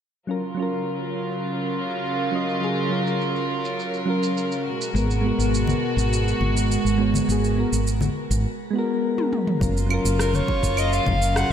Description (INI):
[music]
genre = sunset chillout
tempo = 103 BPM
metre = 4/4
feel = straight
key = F# major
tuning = A4 = 440 Hz
[part]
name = soft electric-piano-like synth keys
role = accompaniment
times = 0.3-11.5 s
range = F#3 to D#5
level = -26 LUFS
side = equal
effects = chorus, auto-pan, ping-pong delay, shimmer reverb
[part]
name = warm studio string section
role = sustained chords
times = 0.3-11.5 s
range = B2 to A#4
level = -26 LUFS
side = right 1 dB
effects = low-pass filter, shimmer reverb
[part]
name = deep house drum kit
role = drums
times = 0.3-11.5 s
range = claves, rim click, shaker, toms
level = -30 LUFS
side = equal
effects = overdrive, low-pass filter on perc, small room ambience, low-pass filter on toms, low-pass filter on snare
[part]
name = woody fretless electric bass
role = bass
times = 4.9-11.5 s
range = F#1 to G#1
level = -23 LUFS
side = equal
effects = tube saturation
[part]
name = congas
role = percussion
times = 5.7-11.2 s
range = none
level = -30 LUFS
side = left 4 dB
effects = none
[part]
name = electronic kick drum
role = drums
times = 9.6-11.2 s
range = none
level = -27 LUFS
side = equal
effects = overdrive, small room ambience
[part]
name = warm soprano saxophone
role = melody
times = 10.2-11.5 s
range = A#4 to F#5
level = -24 LUFS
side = left 1 dB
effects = ping-pong delay, shimmer reverb
[sound]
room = wet lush hall reverb, RT60 2.3 s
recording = dreamy mix soaked in reverb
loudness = -20 LUFS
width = side -8 dB against mid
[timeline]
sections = 0.3-9.6 A section; 9.6-11.5 B section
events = filter sweep on drum 0.3-9.6; drum fill 9.2-9.6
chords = 0.3 F#maj7; 4.7 G#m9; 9.6 F#maj7